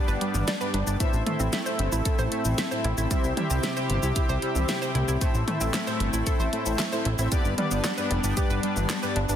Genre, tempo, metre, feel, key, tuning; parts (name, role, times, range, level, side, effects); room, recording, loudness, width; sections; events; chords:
synthwave; 114 BPM; 4/4; straight; A minor; A4 = 440 Hz
chorused pulse-width pad; sustained chords; 0.0-9.4 s; C3 to G4; -30 LUFS; equal; sidechain pumping
analog pluck; arpeggios; 0.0-9.4 s; G3 to E5; -33 LUFS; right 3 dB; chorus, tape echo
mellow synth brass; stabs; 0.0-9.4 s; G2 to G5; -31 LUFS; left 2 dB; chorus, cassette tape, tape echo
fat analog bass; bass; 0.1-9.4 s; F1 to C2; -27 LUFS; equal
pop drum kit; drums; 0.1-9.4 s; cabasa, handclaps, hi-hat, snare drum, toms; -31 LUFS; left 1 dB
electronic kick drum; drums; 1.0-8.5 s; -26 LUFS; equal
moderate lush hall reverb, RT60 1.9 s; dense, heavily limited modern master; -23 LUFS; side -10 dB against mid
0.0-9.4 A section
0.0 G; 1.0 Am; 7.3 G